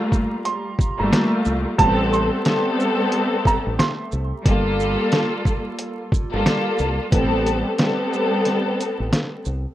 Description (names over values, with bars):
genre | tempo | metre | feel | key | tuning
hip hop, boom-bap hip-hop | 90 BPM | 4/4 | swing 61% on 16ths | unclear | A4 = 444 Hz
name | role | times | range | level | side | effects
warm upright piano | melody | 0.0-4.1 s | A5 to C6 | -24 LUFS | right 4 dB | high-pass filter, low-pass filter, tape echo
clear studio string section | accompaniment | 0.0-9.5 s | G3 to A4 | -21 LUFS | left 1 dB | high-pass filter, low-pass filter
hollow soft pad | sustained chords | 0.0-9.7 s | G3 to Bb5 | -34 LUFS | right 1 dB | none
trip hop sampler-style drum kit | drums | 0.1-9.6 s | hi-hat, kick drum, shaker, snare drum | -21 LUFS | equal | none
deep dub fingered electric bass | bass | 1.0-9.6 s | G1 to C2 | -24 LUFS | equal | none
room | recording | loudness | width
little or no reverb | rough home demo mix, vinyl crackle | -18 LUFS | side -13 dB against mid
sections
0.0-9.7 A section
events
break 8.5-9.7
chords
0.0 Gm9; 1.8 Am9; 4.5 Gm9; 7.1 Am9